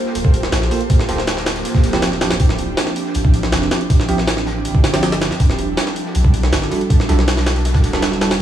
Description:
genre	drum and bass, jungle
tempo	160 BPM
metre	4/4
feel	straight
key	unclear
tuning	A4 = 440 Hz
part	ethereal airy pad	sustained chords	0.0-8.4 s	F3 to C5	-22 LUFS	right 2 dB	ensemble chorus, built-in reverb
part	crunchy breakbeat drum kit	drums	0.1-8.4 s	hi-hat, snare drum	-32 LUFS	left 4 dB	none
part	soft dub sub bass	bass	0.2-8.4 s	D1 to B1	-20 LUFS	equal	none
part	jungle sampler-style drum kit	drums	0.2-8.4 s	hi-hat, kick drum, snare drum	-16 LUFS	equal	none
part	bell-like tine electric piano	stabs	0.7-8.3 s	F3 to C5	-24 LUFS	right 3 dB	lush chorus, dub echo
room	light reverb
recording	vinyl crackle, small room reverb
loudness	-14 LUFS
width	side -11 dB against mid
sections	0.0-8.4 A section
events	none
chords	0.0 Gm11; 1.7 Dm11; 5.4 Em11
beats	0.15 0.53 | 0.90 1.28 1.65 2.03 | 2.40 2.78 3.15 3.53 | 3.90 4.28 4.65 5.03 | 5.40 5.78 6.15 6.53 | 6.90 7.28 7.65 8.03 | 8.40

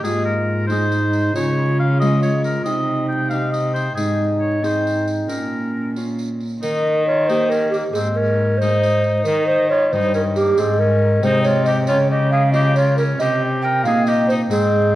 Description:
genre	classical, renaissance-style consort dance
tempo	91 BPM (dotted quarters)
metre	6/8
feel	straight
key	unclear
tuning	A4 = 440 Hz
part	clear oboe	melody	0.0-14.9 s	Bb3 to G5	-25 LUFS	left 1 dB	none
part	mellow hollow tenor recorder	second line	0.0-15.0 s	Db4 to G5	-20 LUFS	right 2 dB	none
part	Celtic harp	accompaniment	0.0-15.0 s	G2 to Ab4	-22 LUFS	left 2 dB	none
part	dark cello	bass	0.0-15.0 s	G2 to Eb3	-21 LUFS	equal	none
part	tambourine	percussion	0.0-14.7 s	none	-40 LUFS	right 4 dB	none
room	wet recital hall reverb, RT60 1.6 s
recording	worn, warbling old tape, cassette tape, vinyl crackle, warbly pitch drift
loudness	-16 LUFS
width	side -15 dB against mid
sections	0.0-6.6 A section; 6.6-15.0 A section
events	none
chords	0.0 Ab; 1.4 Db; 2.7 Cm; 4.0 Ab; 5.3 Bbm; 6.6 Eb; 7.9 Ab; 9.3 Eb; 10.6 Ab; 11.9 Db; 13.2 Cm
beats	| 0.04 0.70 | 1.35 2.01 | 2.66 3.31 | 3.97 4.63 | 5.29 5.96 | 6.63 7.29 | 7.95 8.61 | 9.27 9.93 | 10.58 11.23 | 11.88 12.54 | 13.19 13.85 | 14.50

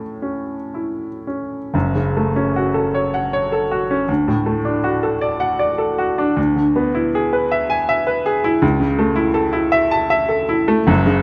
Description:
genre	classical, romantic nocturne for solo piano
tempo	52 BPM (dotted quarters)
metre	6/8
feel	uneven beats, rubato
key	A major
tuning	A4 = 440 Hz
part	clear baby grand piano	solo	0.0-11.2 s	F#1 to A5	-18 LUFS	equal	none
room	moderate stone room reverb, RT60 1.2 s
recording	dark, warm production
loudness	-19 LUFS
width	mono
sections	0.0-1.7 A section; 1.7-11.2 B section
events	none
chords	0.0 A; 1.7 F#m; 4.1 D; 6.4 E7/D; 8.6 A/C#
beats	0.23 | 1.74 2.94 | 4.09 5.23 | 6.38 7.53 | 8.62 9.73 | 10.89

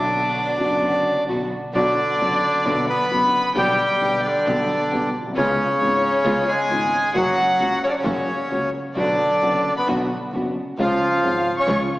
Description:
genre	tango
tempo	133 BPM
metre	4/4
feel	rubato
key	B harmonic minor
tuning	A4 = 440 Hz
part	bandoneon	melody	0.0-11.8 s	C#3 to D5	-20 LUFS	equal	none
part	warm violin	second line	0.0-11.8 s	D4 to C#6	-25 LUFS	equal	none
part	dark grand piano	accompaniment	0.0-11.9 s	F#1 to G4	-26 LUFS	left 1 dB	none
part	dark studio string section	stabs	0.0-11.9 s	G#3 to G4	-30 LUFS	right 1 dB	none
part	warm double bass	bass	0.0-11.9 s	F#1 to C#2	-31 LUFS	right 1 dB	none
room	wet concert hall reverb, RT60 1.8 s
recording	heard from further back in the room, small speaker sound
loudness	-18 LUFS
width	side -18 dB against mid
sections	0.0-1.7 A section; 1.7-12.0 B section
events	none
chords	0.0 Bm; 3.6 G/B; 5.3 C#7; 7.1 F#; 9.0 Bm; 10.8 C#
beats	0.35 0.81 1.27 | 1.74 2.19 2.65 3.11 | 3.56 4.01 4.46 4.91 | 5.35 5.79 6.24 6.69 | 7.14 7.59 8.04 8.49 | 8.96 9.41 9.87 10.33 | 10.78 11.23 11.68

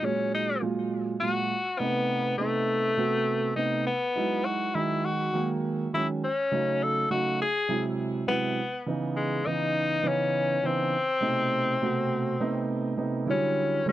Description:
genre	jazz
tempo	102 BPM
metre	4/4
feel	swing 55% on 16ths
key	unclear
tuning	A4 = 440 Hz
part	bright tenor saxophone	melody	0.0-13.9 s	G#3 to A4	-27 LUFS	left 2 dB	none
part	dark baby grand piano	accompaniment	0.0-13.9 s	A#2 to G#4	-28 LUFS	right 3 dB	none
room	light reverb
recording	dry, close 1970s-style studio recording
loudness	-25 LUFS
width	side -14 dB against mid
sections	0.0-13.3 A section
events	none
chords	0.0 F#maj9; 1.5 B7b9; 3.9 Emaj9; 6.2 D#m7b5; 7.4 G#aug7; 8.6 C#m9; 10.9 B7b9; 13.3 Em9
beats	0.33 0.92 | 1.51 2.10 2.68 3.27 | 3.86 4.45 5.04 5.63 | 6.22 6.81 7.40 7.99 | 8.58 9.16 9.75 10.34 | 10.93 11.52 12.11 12.69 | 13.28 13.87

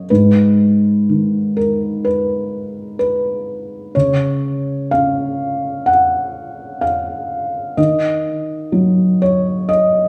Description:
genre	neoclassical minimalist piano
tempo	63 BPM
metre	4/4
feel	rubato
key	unclear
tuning	A4 = 440 Hz
part	felt-muted upright piano	solo	0.0-10.1 s	G#2 to F#5	-17 LUFS	equal	none
room	wet large studio reverb, RT60 1.4 s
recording	band playing live in one room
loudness	-17 LUFS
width	mono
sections	0.0-10.1 A section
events	none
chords	0.1 G#m; 3.9 N.C.; 7.8 D#m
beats	| 0.10 1.08 2.05 3.00 | 3.94 4.90 5.87 6.82 | 7.77 8.73 9.69

